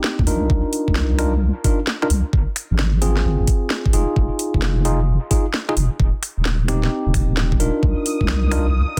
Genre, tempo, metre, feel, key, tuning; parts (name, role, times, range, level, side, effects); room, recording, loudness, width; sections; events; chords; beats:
UK garage, two-step garage; 131 BPM; 4/4; swing 66% on 16ths; C minor; A4 = 440 Hz
tine electric piano; stabs; 0.0-9.0 s; C4 to Bb4; -26 LUFS; equal; dub echo
garage drum kit; drums; 0.0-9.0 s; finger snaps, hi-hat, snare drum; -27 LUFS; equal
deep soft wobble bass; bass; 0.2-8.8 s; Eb1 to Eb2; -21 LUFS; equal; chorus
electronic kick drum; drums; 0.2-9.0 s; -21 LUFS; equal
soft string machine; sustained chords; 7.8-9.0 s; Eb6; -33 LUFS; equal; ensemble chorus, sidechain pumping
little or no reverb; dense, heavily limited modern master; -19 LUFS; mono
0.0-9.0 A section
0.0 Eb6; 0.5 Cm11; 2.3 Ab6; 4.2 Fm7; 6.0 Eb6; 7.8 Cm11
0.04 | 0.50 0.96 1.42 1.87 | 2.33 2.79 3.25 3.71 | 4.16 4.62 5.08 5.54 | 6.00 6.45 6.91 7.37 | 7.83 8.29 8.74